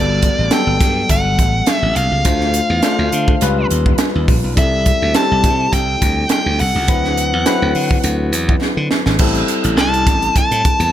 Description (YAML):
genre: polished 1980s jazz-funk pop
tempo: 104 BPM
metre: 4/4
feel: swing 54% on 16ths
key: G major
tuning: A4 = 439 Hz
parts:
  - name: nasal lead guitar with a parked wah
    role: melody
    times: 0.0-10.9 s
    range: D5 to A5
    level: -18 LUFS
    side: equal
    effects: overdrive
  - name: barky tine electric piano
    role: accompaniment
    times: 0.0-10.9 s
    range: F#3 to C5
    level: -20 LUFS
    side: left 3 dB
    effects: wide subtle chorus
  - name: glassy slap bass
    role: bass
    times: 0.0-10.9 s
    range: G1 to D3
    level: -18 LUFS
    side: equal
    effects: none
  - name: crisp fusion drum kit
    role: drums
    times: 0.2-10.9 s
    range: crash cymbal, hi-hat, kick drum, snare drum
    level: -17 LUFS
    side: right 1 dB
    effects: gated reverb
room: light reverb, studio ambience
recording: none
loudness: -13 LUFS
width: side -11 dB against mid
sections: 0.0-9.2 A section; 9.2-10.9 B section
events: drum fill 8.6-9.2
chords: 0.0 Gmaj9; 2.3 Dm7; 3.4 C#7#11; 4.6 C6; 6.9 D13; 9.2 Am7